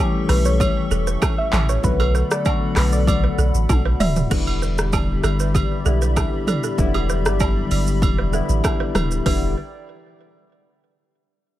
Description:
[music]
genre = afrobeats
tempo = 97 BPM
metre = 4/4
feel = straight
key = E dorian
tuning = A4 = 439 Hz
[part]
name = bell-like tine electric piano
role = accompaniment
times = 0.0-9.5 s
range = D3 to G4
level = -25 LUFS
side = left 4 dB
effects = phaser
[part]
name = hollow soft pad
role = sustained chords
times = 0.0-9.5 s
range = G4 to C#6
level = -30 LUFS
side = left 3 dB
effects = chorus
[part]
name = balafon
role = riff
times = 0.0-9.3 s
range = G4 to D5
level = -30 LUFS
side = right 8 dB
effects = digital delay
[part]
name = soft round pluck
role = melody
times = 0.3-4.1 s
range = B4 to E5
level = -26 LUFS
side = equal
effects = chorus
[part]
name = punchy sub bass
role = bass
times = 0.3-9.5 s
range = D1 to B1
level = -20 LUFS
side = equal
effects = none
[part]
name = deep house drum kit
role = drums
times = 0.3-9.4 s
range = crash cymbal, handclaps, hi-hat, kick drum, rim click, shaker, toms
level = -22 LUFS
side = equal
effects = overdrive
[part]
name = agogo bells and woodblock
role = percussion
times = 0.3-9.5 s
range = none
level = -31 LUFS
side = right 7 dB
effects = none
[sound]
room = little or no reverb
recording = none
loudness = -17 LUFS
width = side -14 dB against mid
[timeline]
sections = 0.0-4.3 A section; 4.3-9.3 B section; 9.3-11.6 C section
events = drum fill 3.7-4.3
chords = 0.0 A7; 1.8 Bm7; 4.3 Em7

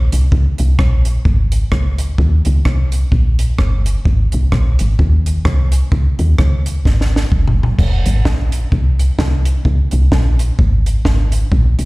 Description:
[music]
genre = ska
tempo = 129 BPM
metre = 4/4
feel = swing 58% on 8ths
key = Db major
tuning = A4 = 441 Hz
[part]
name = woody FM bass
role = bass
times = 0.0-11.9 s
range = F1 to Eb2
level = -14 LUFS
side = equal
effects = none
[part]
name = compact cocktail drum kit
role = drums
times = 0.1-11.9 s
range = crash cymbal, hi-hat, kick drum, rim click, snare drum, toms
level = -16 LUFS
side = equal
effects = none
[sound]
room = little or no reverb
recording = live gig heard through the venue's PA, recital hall reverb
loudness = -12 LUFS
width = side -22 dB against mid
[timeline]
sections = 0.0-7.8 A section; 7.8-11.9 B section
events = drum fill 6.9-7.8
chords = none

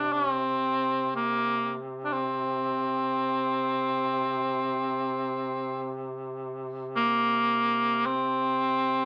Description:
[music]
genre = caucasian folk, Caucasian lament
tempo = free time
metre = none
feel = none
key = unclear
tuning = A4 = 441 Hz
[part]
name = mellow cor anglais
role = melody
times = 0.0-9.1 s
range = Bb3 to D4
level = -28 LUFS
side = equal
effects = none
[part]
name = warm duduk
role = drone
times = 0.0-9.1 s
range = C3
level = -37 LUFS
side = equal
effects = none
[sound]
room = moderate studio reverb, RT60 0.6 s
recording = none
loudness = -28 LUFS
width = mono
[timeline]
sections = 0.0-9.1 A section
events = none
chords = none

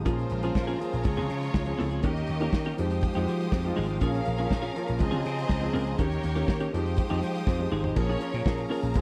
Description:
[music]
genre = disco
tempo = 121 BPM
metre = 4/4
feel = straight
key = Bb dorian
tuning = A4 = 440 Hz
[part]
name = warm concert grand piano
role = accompaniment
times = 0.0-9.0 s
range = Eb3 to Ab4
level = -35 LUFS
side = equal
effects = none
[part]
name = clear symphonic string section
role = sustained chords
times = 0.0-9.0 s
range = Ab3 to Eb6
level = -43 LUFS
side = equal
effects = none
[part]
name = vintage slap bass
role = bass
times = 0.0-9.0 s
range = Ab1 to F3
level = -32 LUFS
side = equal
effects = none
[part]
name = clear studio string section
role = second line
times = 0.1-9.0 s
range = Ab3 to F5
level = -38 LUFS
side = equal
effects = none
[part]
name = semi-hollow electric guitar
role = accompaniment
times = 0.1-9.0 s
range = Ab3 to Bb4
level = -36 LUFS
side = equal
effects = lush chorus
[part]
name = warm soul drum kit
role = drums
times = 0.1-9.0 s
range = crash cymbal, hi-hat, kick drum, snare drum, toms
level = -30 LUFS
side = equal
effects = none
[sound]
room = little or no reverb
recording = dry, close 1970s-style studio recording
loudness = -28 LUFS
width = mono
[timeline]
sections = 0.1-8.0 A section; 8.0-9.0 B section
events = drum fill 7.5-8.0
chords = 0.1 Bbm7; 1.1 Dbmaj7; 2.0 Eb7; 2.8 Fm9; 4.0 Bbm7; 5.0 Dbmaj7; 6.0 Eb7; 6.7 Fm9; 8.0 Bbm7

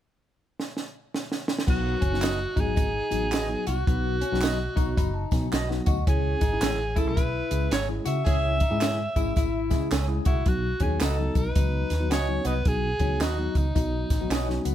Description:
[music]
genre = uptempo 1960s-style soul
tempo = 109 BPM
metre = 4/4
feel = swing 63% on 8ths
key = B mixolydian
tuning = A4 = 441 Hz
[part]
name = compact cocktail drum kit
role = drums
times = 0.6-14.7 s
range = crash cymbal, hi-hat, kick drum, snare drum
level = -27 LUFS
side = equal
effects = none
[part]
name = bright alto saxophone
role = melody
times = 1.7-14.7 s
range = D#4 to E5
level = -30 LUFS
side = right 1 dB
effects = none
[part]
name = tine electric piano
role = accompaniment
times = 1.7-14.7 s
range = F#3 to C#6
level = -32 LUFS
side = left 3 dB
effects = medium stereo tremolo
[part]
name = electric guitar through a small old amp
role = riff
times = 1.7-14.7 s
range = B3 to F#4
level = -34 LUFS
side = left 6 dB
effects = none
[part]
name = vintage muted fingered electric bass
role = bass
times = 1.7-14.7 s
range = F#1 to C#3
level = -28 LUFS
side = equal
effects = none
[part]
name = tambourine and handclaps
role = percussion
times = 1.7-14.7 s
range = none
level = -40 LUFS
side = right 3 dB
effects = none
[part]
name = electric guitar through a small old amp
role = stabs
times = 2.2-14.5 s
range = F#4 to E5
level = -36 LUFS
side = right 5 dB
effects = none
[part]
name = warm horn section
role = second line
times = 8.3-8.5 s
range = C#4 to G#4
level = -36 LUFS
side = right 4 dB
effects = none
[sound]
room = light reverb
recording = band playing live in one room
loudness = -23 LUFS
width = side -11 dB against mid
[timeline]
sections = 0.0-1.7 A section; 1.7-10.5 B section; 10.5-14.7 C section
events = drum fill 0.6-1.7; tine electric piano fill 4.4-6.1; band accent 8.3-10.5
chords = 0.0 N.C.; 1.7 B; 6.1 C#m; 10.5 B

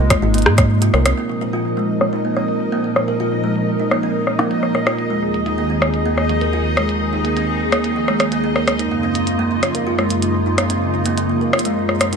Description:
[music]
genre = IDM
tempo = 126 BPM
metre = 4/4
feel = straight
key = Bb minor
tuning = A4 = 440 Hz
[part]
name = warbly lo-fi synth keys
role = melody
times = 0.0-0.7 s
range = Eb5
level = -31 LUFS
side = right 9 dB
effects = chorus, digital delay
[part]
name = hollow soft pad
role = sustained chords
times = 0.0-12.2 s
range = Eb2 to Bb4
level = -21 LUFS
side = left 1 dB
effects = ensemble chorus, sidechain pumping
[part]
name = metallic FM bass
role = bass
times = 0.0-1.1 s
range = Ab1 to Ab2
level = -16 LUFS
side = equal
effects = none
[part]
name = electronic kick drum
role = drums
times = 0.1-0.7 s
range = none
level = -17 LUFS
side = equal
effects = overdrive
[part]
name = glitchy drum kit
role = drums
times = 0.1-12.2 s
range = hi-hat, rim click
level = -20 LUFS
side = left 1 dB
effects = low-pass filter on snare, low-pass filter on hats, low-pass filter on toms, digital delay
[part]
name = kalimba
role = arpeggios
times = 0.2-12.2 s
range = F3 to Bb4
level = -21 LUFS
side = right 3 dB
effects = vintage 12-bit sampler grit, low-pass filter, dub echo
[part]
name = bubbling stepped-filter texture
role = texture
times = 1.2-12.2 s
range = Eb4 to Eb5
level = -25 LUFS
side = left 1 dB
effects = chorus, built-in reverb
[sound]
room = light reverb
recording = none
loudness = -16 LUFS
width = side -6 dB against mid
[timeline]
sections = 0.0-1.2 A section; 1.2-12.2 B section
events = kick drops out 0.7-1.2; filter sweep on drum 1.2-12.2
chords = 0.0 Ab; 1.2 Bb5; 5.0 Ebsus4; 8.8 Gbmaj7

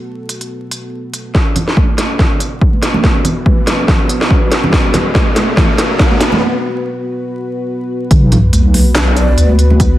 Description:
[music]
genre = deep dubstep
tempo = 142 BPM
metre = 4/4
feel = swing 56% on 16ths, half-time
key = B minor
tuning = A4 = 442 Hz
[part]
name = dark analog pad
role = sustained chords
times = 0.0-10.0 s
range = B3 to B4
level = -21 LUFS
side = left 1 dB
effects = chorus
[part]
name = garage drum kit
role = drums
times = 0.3-9.9 s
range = handclaps, hi-hat, snare drum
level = -16 LUFS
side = equal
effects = none
[part]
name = electronic kick drum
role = drums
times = 1.3-9.9 s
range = none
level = -12 LUFS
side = equal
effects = overdrive
[part]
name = riser and sub drop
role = sound effects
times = 2.4-9.8 s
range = none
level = -19 LUFS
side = equal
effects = none
[part]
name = congas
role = percussion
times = 1.6-9.8 s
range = none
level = -19 LUFS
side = right 3 dB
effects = none
[part]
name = deep soft wobble bass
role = bass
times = 8.1-10.0 s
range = B1 to D2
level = -10 LUFS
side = equal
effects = chorus
[part]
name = breathy mellow ney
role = melody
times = 9.2-9.5 s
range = D5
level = -21 LUFS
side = right 2 dB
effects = dub echo
[sound]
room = light reverb, digital ambience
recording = vinyl crackle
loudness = -10 LUFS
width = side -14 dB against mid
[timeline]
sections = 0.0-1.3 A section; 1.3-8.1 B section; 8.1-10.0 C section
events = build-up 1.3-8.1; drum fill 1.3-6.4; filter sweep on analog synth pad 1.3-8.1; riser 2.4-6.4; break 6.4-8.1; drop 8.1-10.0; impact 8.1-9.8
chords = 0.0 B5

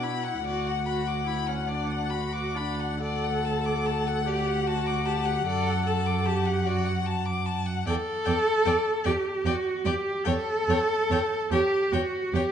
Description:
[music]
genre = classical, slow romantic movement for string quartet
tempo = 74 BPM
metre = 3/4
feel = rubato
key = unclear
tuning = A4 = 440 Hz
[part]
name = rich violin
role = melody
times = 0.0-12.4 s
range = F#5 to G5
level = -33 LUFS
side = left 12 dB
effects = none
[part]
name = clear violin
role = second line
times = 0.0-12.4 s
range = C#5 to D6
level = -34 LUFS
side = left 4 dB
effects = none
[part]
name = clear viola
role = accompaniment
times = 0.0-12.5 s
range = C#4 to A4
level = -27 LUFS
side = right 1 dB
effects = none
[part]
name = dark cello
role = bass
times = 0.0-12.4 s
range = D2 to B2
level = -29 LUFS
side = right 3 dB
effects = none
[sound]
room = wet recital hall reverb, RT60 1.5 s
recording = nothing above 10.4 kHz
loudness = -24 LUFS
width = side -8 dB against mid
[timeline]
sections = 0.0-12.5 A section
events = none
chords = 0.4 Bm/D; 3.0 D; 5.5 D/F#; 7.9 Em

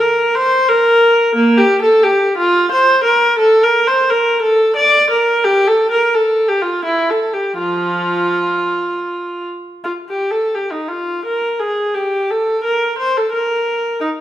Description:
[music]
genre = classical, baroque-style suite movement for unaccompanied viola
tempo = 78-90 BPM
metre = 3/4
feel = rubato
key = F major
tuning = A4 = 441 Hz
[part]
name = rich viola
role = solo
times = 0.0-14.1 s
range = F3 to D5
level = -12 LUFS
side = equal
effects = none
[sound]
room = moderate recital hall reverb, RT60 1.3 s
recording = minimal, uncompressed stereo recording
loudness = -12 LUFS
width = side -12 dB against mid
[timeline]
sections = 0.0-9.9 A section; 9.9-14.2 A section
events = none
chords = none

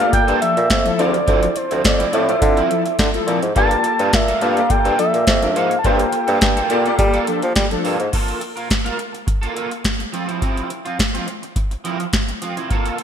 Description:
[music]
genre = early-eighties boogie funk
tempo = 105 BPM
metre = 4/4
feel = straight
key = G dorian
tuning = A4 = 444 Hz
[part]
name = expressive synth lead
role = melody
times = 0.0-7.6 s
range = C5 to A5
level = -20 LUFS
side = right 1 dB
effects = chorus, digital delay
[part]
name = clear baby grand piano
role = accompaniment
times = 0.0-7.6 s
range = Bb3 to D5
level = -22 LUFS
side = left 2 dB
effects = ensemble chorus
[part]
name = electric guitar at the edge of break-up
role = riff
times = 0.0-13.0 s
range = F3 to Bb4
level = -25 LUFS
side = right 3 dB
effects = ensemble chorus
[part]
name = clear bassoon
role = bass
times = 0.0-8.1 s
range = D2 to G3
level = -20 LUFS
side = equal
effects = none
[part]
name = booming analog drum machine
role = drums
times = 0.0-13.0 s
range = crash cymbal, hi-hat, kick drum, snare drum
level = -19 LUFS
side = equal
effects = gated reverb
[part]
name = analog synth brass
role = second line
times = 0.4-8.0 s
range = F3 to Bb4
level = -25 LUFS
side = left 4 dB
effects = chorus, digital delay
[sound]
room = moderate lush hall reverb, RT60 1.6 s, digital ambience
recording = bright 1980s-style digital production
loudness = -16 LUFS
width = side -8 dB against mid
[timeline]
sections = 0.0-8.1 A section; 8.1-13.0 B section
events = none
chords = 0.0 Gm9; 1.0 Dm9; 3.6 Gm9; 8.1 Fadd11/Bb; 10.1 Cadd11/F

